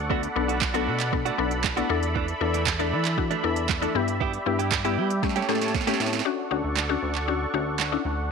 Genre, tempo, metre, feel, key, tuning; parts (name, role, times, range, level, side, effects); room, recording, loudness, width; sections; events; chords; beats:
dance-pop; 117 BPM; 4/4; straight; D major; A4 = 440 Hz
filtered supersaw swell; sustained chords; 0.0-8.3 s; G4 to C#6; -30 LUFS; right 1 dB; sidechain pumping
chorused synth bass; bass; 0.0-8.3 s; B1 to G3; -29 LUFS; right 1 dB; sidechain pumping
mallet-like synth pluck; accompaniment; 0.1-8.1 s; A3 to A4; -28 LUFS; left 16 dB; chorus, sidechain pumping
direct-recorded clean electric guitar; riff; 0.1-6.2 s; E3 to G4; -31 LUFS; right 13 dB; lush chorus
smooth R&B drum kit; drums; 0.1-7.9 s; handclaps, hi-hat, kick drum, snare drum; -28 LUFS; right 6 dB; overdrive
light reverb; 1960s-style stereo with parts hard left and right; -23 LUFS; side -5 dB against mid
0.0-6.3 A section; 6.3-8.3 B section
drum fill 5.2-6.3
0.1 Bm7; 1.9 E7sus4; 4.0 G6; 5.2 A7; 6.3 Dmaj7
| 0.10 0.62 1.13 1.64 | 2.16 2.67 3.18 3.69 | 4.21 4.72 5.23 5.75 | 6.26 6.77 7.28 7.80 | 8.31